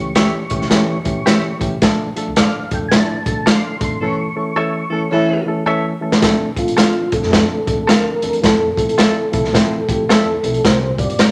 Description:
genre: uptempo 1960s-style soul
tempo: 109 BPM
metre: 4/4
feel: swing 62% on 8ths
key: D minor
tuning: A4 = 440 Hz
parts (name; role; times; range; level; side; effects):
- percussive tonewheel organ; melody; 0.0-11.3 s; F4 to C#6; -24 LUFS; equal; chorus vibrato, slow rotary speaker
- barky reed electric piano; accompaniment; 0.0-11.3 s; E3 to C5; -23 LUFS; equal; overdrive
- upright bass; bass; 0.0-11.3 s; G1 to A2; -31 LUFS; equal; none
- direct-recorded clean electric guitar; stabs; 0.2-11.3 s; F4 to F5; -24 LUFS; equal; none
- crunchy breakbeat drum kit; drums; 0.2-11.3 s; hi-hat, kick drum, snare drum; -18 LUFS; equal; none
- dark saxophone section; second line; 4.0-5.5 s; E3 to A4; -26 LUFS; equal; none
room: moderate large studio reverb, RT60 1.1 s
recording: none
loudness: -16 LUFS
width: mono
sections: 0.0-6.2 A section; 6.2-11.3 B section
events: band accent 4.0-6.2; drum fill 5.1-6.2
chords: 0.0 A7; 1.8 Dm; 4.0 A; 6.2 Dm7; 8.4 Fmaj7; 10.6 C7sus4

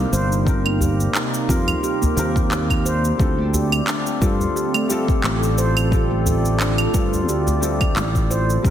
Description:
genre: organic downtempo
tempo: 88 BPM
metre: 4/4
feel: swing 55% on 16ths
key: unclear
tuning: A4 = 438 Hz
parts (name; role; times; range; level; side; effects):
- felt-muted upright piano; accompaniment; 0.0-8.7 s; G3 to Bb4; -28 LUFS; left 4 dB; sidechain pumping, ping-pong delay
- warbly tape-like pad; sustained chords; 0.0-8.7 s; C3 to D5; -27 LUFS; right 3 dB; chorus, built-in reverb, phaser, sidechain pumping
- handpan; arpeggios; 0.0-8.7 s; A3 to C5; -24 LUFS; equal; low-pass filter, ping-pong delay
- sustaining fretless electric bass; bass; 0.0-8.7 s; G1 to G2; -21 LUFS; equal; lush chorus, sidechain pumping
- electronic cabasa, claves and handclaps; drums; 0.1-8.7 s; none; -25 LUFS; right 1 dB; none
- electronic kick drum; drums; 0.5-8.7 s; none; -20 LUFS; equal; none
- udu; percussion; 0.8-7.6 s; none; -25 LUFS; left 1 dB; none
room: moderate lush hall reverb, RT60 1.8 s, studio reverb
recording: dense, heavily limited modern master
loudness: -17 LUFS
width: side -10 dB against mid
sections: 0.0-8.7 A section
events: none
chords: 0.0 Cm7; 3.2 Dm7

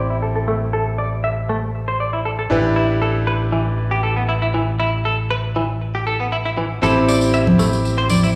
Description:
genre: nu-disco, nu disco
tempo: 118 BPM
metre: 4/4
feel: straight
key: A minor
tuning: A4 = 439 Hz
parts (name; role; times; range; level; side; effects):
- bright electric grand piano; accompaniment; 0.0-8.4 s; C4 to B5; -25 LUFS; equal; digital delay
- direct-recorded clean electric guitar; riff; 0.0-8.3 s; E3 to E5; -24 LUFS; equal; subtle chorus, low-pass filter, digital delay
- fingered electric bass; bass; 0.0-8.4 s; A1; -24 LUFS; equal; none
- tambourine and congas; percussion; 6.8-8.3 s; none; -21 LUFS; equal; none
room: moderate plate reverb, RT60 1.8 s, small room ambience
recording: played on a big sound system in a bare room, stone room reverb, studio ambience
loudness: -19 LUFS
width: mono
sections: 0.0-8.4 A section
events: filter sweep on clean electric guitar 0.0-8.4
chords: 0.0 Am7; 2.5 Em7/A; 6.8 Am7

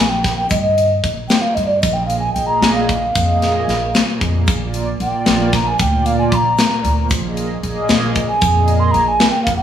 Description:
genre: progressive instrumental, band music in an uneven meter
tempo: 228 BPM (eighths)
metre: 5/8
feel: straight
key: Bb mixolydian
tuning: A4 = 440 Hz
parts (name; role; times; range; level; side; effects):
- mellow hollow alto ocarina; melody; 0.0-9.6 s; D5 to C6; -18 LUFS; right 1 dB; none
- upright bass; bass; 0.0-9.6 s; Bb1 to G2; -20 LUFS; equal; none
- tight metal drum kit; drums; 0.2-9.6 s; hi-hat, kick drum, snare drum; -18 LUFS; left 2 dB; none
- egg shaker; percussion; 0.2-9.6 s; none; -36 LUFS; left 4 dB; none
- chorused pulse-width pad; accompaniment; 1.9-9.6 s; Bb2 to F5; -21 LUFS; right 2 dB; none
room: light reverb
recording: band playing live in one room, small room ambience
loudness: -14 LUFS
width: side -9 dB against mid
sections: 0.0-9.6 A section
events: ocarina solo 0.0-9.6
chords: 0.0 Bb5; 1.8 Bb7sus4; 4.5 Gm7/Bb; 7.1 Bb7sus4

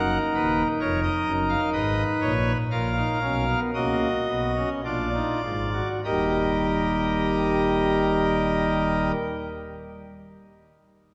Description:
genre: classical, baroque-style 4-part fugue for pipe organ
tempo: 48-68 BPM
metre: 3/4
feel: straight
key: unclear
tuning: A4 = 440 Hz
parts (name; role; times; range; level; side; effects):
- pipe organ, cornet; solo; 0.0-9.1 s; Eb1 to Gb5; -25 LUFS; equal; none
room: wet church reverb, RT60 3.2 s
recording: none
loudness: -24 LUFS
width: mono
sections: 0.0-6.0 A section; 6.0-9.8 B section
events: slowing down 0.0-6.0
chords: 0.0 Ebm; 1.7 Abm; 2.7 Ebm/Bb; 4.8 Bb7; 6.0 Eb

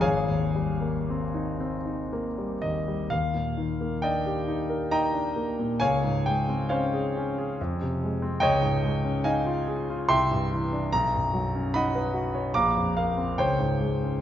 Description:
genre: classical, impressionist solo piano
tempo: 56-74 BPM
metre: 3/4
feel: rubato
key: Ab major, Eb mixolydian from 3.1 s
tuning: A4 = 439 Hz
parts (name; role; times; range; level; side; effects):
- clear concert grand piano; solo; 0.0-14.2 s; Ab1 to D6; -24 LUFS; equal; none
room: wet concert hall reverb, RT60 2.4 s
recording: nothing above 7.5 kHz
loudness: -24 LUFS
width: side -11 dB against mid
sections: 0.0-3.1 A section; 3.1-14.2 B section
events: none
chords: 0.0 Abmaj9; 3.1 Ebmaj7; 5.8 Dbmaj7; 7.6 Fm; 8.4 Dbadd9; 10.1 Cadd9; 10.9 Badd9; 12.5 Bbadd9; 13.4 Dbmaj7(no3)

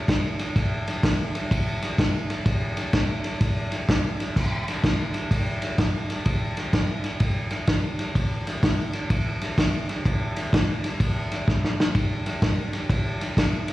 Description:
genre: blues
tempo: 126 BPM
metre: 4/4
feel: swing 65% on 8ths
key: none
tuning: none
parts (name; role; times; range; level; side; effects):
- vintage drum kit; drums; 0.1-13.7 s; crash cymbal, kick drum, ride cymbal, snare drum; -22 LUFS; equal; none
room: wet club reverb, RT60 0.6 s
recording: live gig heard through the venue's PA, recital hall reverb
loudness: -22 LUFS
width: side -16 dB against mid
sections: 0.0-4.4 A section; 4.4-13.7 B section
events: drum fill 11.5-11.9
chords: none

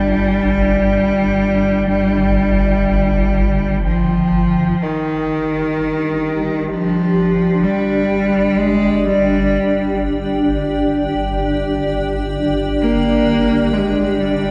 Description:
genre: dark ambient drone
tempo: free time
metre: none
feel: none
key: unclear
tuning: A4 = 440 Hz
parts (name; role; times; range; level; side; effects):
- clear cello; melody; 0.0-14.5 s; Eb3 to Bb3; -18 LUFS; equal; dub echo
- swarming drone; drone; 0.0-14.5 s; G1; -25 LUFS; equal; built-in reverb
- wind-like tuned noise texture; texture; 0.0-4.8 s; G5; -32 LUFS; equal; built-in reverb
- granular cloud pad; sustained chords; 6.0-14.5 s; D4 to G5; -20 LUFS; equal; built-in reverb
room: wet spring reverb, RT60 2.3 s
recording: echo-heavy mix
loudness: -17 LUFS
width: mono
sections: 0.0-4.8 A section; 4.8-14.5 B section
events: fade-in on synth drone 4.8-14.5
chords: 0.0 N.C.; 4.8 G5

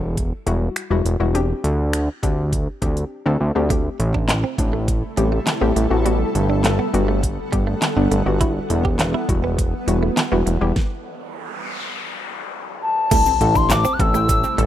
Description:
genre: dance-pop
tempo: 102 BPM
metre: 4/4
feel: straight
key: unclear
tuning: A4 = 441 Hz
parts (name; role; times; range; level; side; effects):
- hollow square pluck; accompaniment; 0.0-14.6 s; G3 to A4; -25 LUFS; left 4 dB; chorus, sidechain pumping
- fat analog bass; bass; 0.0-14.7 s; E1 to D2; -20 LUFS; equal; sidechain pumping
- pop drum kit; drums; 0.2-14.7 s; crash cymbal, finger snaps, handclaps, hi-hat, kick drum, snare drum; -22 LUFS; equal; none
- shimmering ambient pad; sustained chords; 4.5-14.7 s; C3 to F#5; -27 LUFS; equal; chorus, built-in reverb, sidechain pumping
- direct-recorded clean electric guitar; riff; 3.7-14.7 s; G3 to G4; -26 LUFS; right 8 dB; analog chorus
- noise sweep and impact; sound effects; 11.1-14.7 s; none; -29 LUFS; equal; none
- hollow clarinet-like synth lead; melody; 12.8-14.7 s; A5 to F#6; -18 LUFS; left 4 dB; chorus, phaser, ping-pong delay
- wide unison pluck; arpeggios; 13.1-14.7 s; G3 to G5; -32 LUFS; right 3 dB; sidechain pumping, ping-pong delay
- tube shaker; percussion; 13.1-14.6 s; none; -33 LUFS; right 11 dB; none
room: little or no reverb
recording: rough home demo mix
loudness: -17 LUFS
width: side -11 dB against mid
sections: 0.0-13.1 A section; 13.1-14.7 B section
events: silent gap 3.1-3.7; stop 10.8-13.1; noise sweep 11.1-13.1; impact 13.1-14.7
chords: 0.0 Emadd9; 1.3 D7sus4; 3.7 Am7; 6.1 Gmaj7; 8.4 Emadd9; 10.8 N.C.; 13.1 Am7

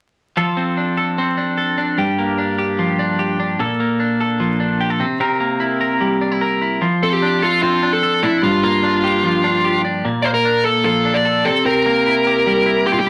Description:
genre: indie pop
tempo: 149 BPM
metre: 4/4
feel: straight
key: F major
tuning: A4 = 440 Hz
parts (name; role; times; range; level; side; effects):
- twelve-string electric guitar; arpeggios; 0.4-13.1 s; G2 to Bb4; -19 LUFS; equal; none
- dark smooth lead guitar; melody; 7.0-13.1 s; E4 to D5; -18 LUFS; equal; overdrive
room: wet small room ambience, RT60 0.5 s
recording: vinyl crackle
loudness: -17 LUFS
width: mono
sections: 0.4-6.8 A section; 6.8-13.1 B section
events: none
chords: 0.4 F6; 2.0 Gm7; 3.6 Bbmaj7; 5.0 C7; 6.8 F6; 8.4 Gm7; 10.0 Bbmaj7; 11.5 C7

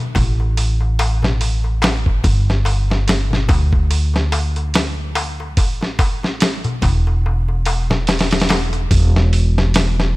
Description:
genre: trip hop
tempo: 72 BPM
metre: 4/4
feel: swing 57% on 16ths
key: unclear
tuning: A4 = 440 Hz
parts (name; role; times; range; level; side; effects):
- upright bass; bass; 0.0-10.1 s; E1 to D2; -17 LUFS; equal; none
- darbuka; percussion; 0.1-8.9 s; none; -25 LUFS; left 2 dB; none
- dusty soul sampler-style drum kit; drums; 0.2-10.2 s; hi-hat, kick drum, snare drum; -18 LUFS; equal; none
room: small room ambience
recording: none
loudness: -14 LUFS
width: side -20 dB against mid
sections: 0.0-8.9 A section; 8.9-10.2 B section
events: kick drops out 7.2-8.9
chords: none

